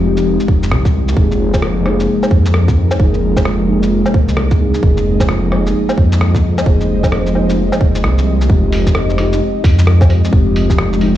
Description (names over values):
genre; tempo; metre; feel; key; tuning
future garage; 131 BPM; 4/4; swing 62% on 16ths; F minor; A4 = 440 Hz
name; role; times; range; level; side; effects
muted felt-like synth keys; accompaniment; 0.0-11.2 s; Ab3 to Ab4; -19 LUFS; left 1 dB; chorus, sidechain pumping, tape echo
ethereal airy pad; sustained chords; 0.0-11.2 s; F3 to G5; -20 LUFS; equal; ensemble chorus, built-in reverb, phaser, sidechain pumping
swelling detuned saw bass; bass; 0.0-11.2 s; F1 to F2; -14 LUFS; equal; sidechain pumping
lo-fi sampler-style drum kit; drums; 0.2-11.1 s; hi-hat, rim click, shaker, woodblock; -22 LUFS; equal; vintage 12-bit sampler grit
electronic kick drum; drums; 0.5-10.8 s; none; -12 LUFS; equal; vintage 12-bit sampler grit
room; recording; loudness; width
digital ambience; played on a big sound system in a bare room, cassette tape, large studio reverb, nothing above 10.5 kHz; -11 LUFS; side -12 dB against mid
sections
0.0-8.5 A section; 8.5-11.2 B section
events
kick drops out 8.0-8.5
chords
0.0 Fm7